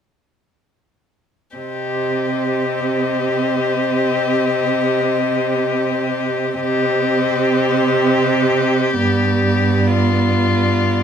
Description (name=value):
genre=classical, slow romantic movement for string quartet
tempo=free time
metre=none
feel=none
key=C minor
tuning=A4 = 440 Hz
part: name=dark violin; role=melody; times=1.6-11.0 s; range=D5 to Eb5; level=-23 LUFS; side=left 12 dB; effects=none
part: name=rich violin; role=second line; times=1.6-11.0 s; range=F4 to G4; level=-21 LUFS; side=left 4 dB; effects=none
part: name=dark viola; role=accompaniment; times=1.6-11.0 s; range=B3 to C4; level=-22 LUFS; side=right 2 dB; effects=none
part: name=rich cello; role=bass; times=1.6-11.0 s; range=G2 to C3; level=-20 LUFS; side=right 4 dB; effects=none
room=light reverb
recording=minimal, uncompressed stereo recording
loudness=-15 LUFS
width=side -8 dB against mid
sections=1.6-11.0 A section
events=none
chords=1.6 Cm; 9.0 G7